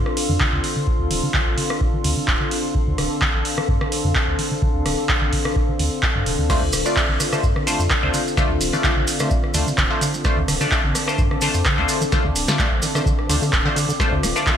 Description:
acid house; 128 BPM; 4/4; swing 54% on 16ths; D minor; A4 = 440 Hz
warm analog pad; sustained chords; 0.0-14.6 s; D3 to A4; -28 LUFS; equal; wide subtle chorus, sidechain pumping
deep acid bass; riff; 0.0-14.5 s; C3 to F4; -27 LUFS; equal; tube saturation, sidechain pumping, digital delay
saturated sub bass; bass; 0.0-14.3 s; D1 to G2; -24 LUFS; equal; sidechain pumping
warbly tape-like pad; texture; 0.0-14.6 s; D4 to D6; -28 LUFS; left 2 dB; chorus, built-in reverb, sidechain pumping
booming analog drum machine; drums; 0.1-14.6 s; crash cymbal, handclaps, hi-hat, rim click, snare drum; -23 LUFS; right 1 dB
electronic kick drum; drums; 0.4-14.6 s; -22 LUFS; equal
band-passed chord stab; stabs; 6.5-14.6 s; A3 to D5; -25 LUFS; left 2 dB; phaser, digital delay
maracas; percussion; 6.5-14.6 s; -28 LUFS; right 3 dB
light reverb; bright 1980s-style digital production; -17 LUFS; side -9 dB against mid
0.0-14.6 A section
filter sweep on acid bass 0.0-14.6
0.0 Dm7

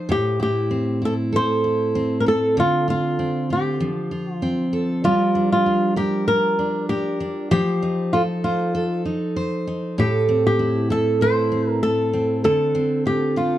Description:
pop; 97 BPM; 4/4; swing 55% on 16ths; G minor; A4 = 440 Hz
picked steel-string acoustic guitar; accompaniment; 0.0-13.6 s; A2 to C5; -21 LUFS; right 1 dB
flamenco guitar; melody; 0.1-13.6 s; F4 to C5; -21 LUFS; left 1 dB; plate reverb
moderate studio ambience, RT60 0.5 s; dark, warm production; -18 LUFS; side -13 dB against mid
0.0-5.0 A section; 5.0-13.6 B section
0.1 Am7; 2.6 Dm7; 3.8 Fadd9; 5.0 Gm7; 7.5 F7; 10.0 Am; 12.4 Dm7

